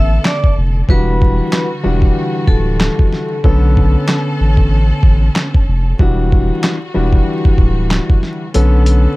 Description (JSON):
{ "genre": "hip hop, boom-bap hip-hop", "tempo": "94 BPM", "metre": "4/4", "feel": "swing 58% on 16ths", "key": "unclear", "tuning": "A4 = 435 Hz", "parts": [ { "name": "vibraphone with hard mallets", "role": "melody", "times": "0.0-3.4 s", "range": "A4 to E6", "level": "-23 LUFS", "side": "equal", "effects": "ping-pong delay" }, { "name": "dark baby grand piano", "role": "accompaniment", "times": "0.0-9.2 s", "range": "D3 to A4", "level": "-18 LUFS", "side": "left 1 dB", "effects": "none" }, { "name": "warm studio string section", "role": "sustained chords", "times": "0.0-9.2 s", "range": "D3 to A4", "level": "-25 LUFS", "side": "right 1 dB", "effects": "none" }, { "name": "saturated sub bass", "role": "bass", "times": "0.0-9.1 s", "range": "D1 to B1", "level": "-13 LUFS", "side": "equal", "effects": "none" }, { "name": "dusty soul sampler-style drum kit", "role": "drums", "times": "0.3-9.0 s", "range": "handclaps, hi-hat, kick drum, snare drum", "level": "-12 LUFS", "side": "equal", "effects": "none" } ], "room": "little or no reverb", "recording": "dark, warm production, vinyl crackle", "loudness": "-11 LUFS", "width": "side -20 dB against mid", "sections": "0.0-9.2 A section", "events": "break 0.0-8.5; kick muted 8.5-9.2", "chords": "0.0 Bm9; 0.9 Em9; 3.4 Bm9; 6.0 Em9; 8.5 Bm9", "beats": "0.25 | 0.89 1.53 2.16 2.80 | 3.44 4.08 4.72 5.36 | 5.99 6.63 7.27 7.91 | 8.55" }